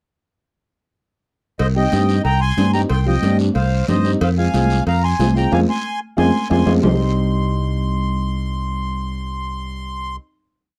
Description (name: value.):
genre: latin, cumbia.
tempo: 183 BPM.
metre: 4/4.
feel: straight.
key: C minor.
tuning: A4 = 439 Hz.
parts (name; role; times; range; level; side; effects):
accordion; melody; 1.6-10.2 s; C5 to C6; -26 LUFS; equal; none.
fingered electric bass; bass; 1.6-10.2 s; C2 to G2; -21 LUFS; equal; none.
cowbell and timbales; percussion; 1.6-6.9 s; none; -29 LUFS; equal; none.
guiro; percussion; 1.6-6.9 s; none; -39 LUFS; equal; none.
warm upright piano; accompaniment; 1.8-10.2 s; G3 to F4; -25 LUFS; equal; none.
congas; percussion; 1.9-6.9 s; none; -26 LUFS; equal; none.
room: little or no reverb.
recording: dry, close 1970s-style studio recording.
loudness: -18 LUFS.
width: mono.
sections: 1.6-6.8 groove; 6.8-9.4 final chord.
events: band accent 5.5-6.8.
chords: 1.6 Cm; 4.2 Fm; 6.8 Cm.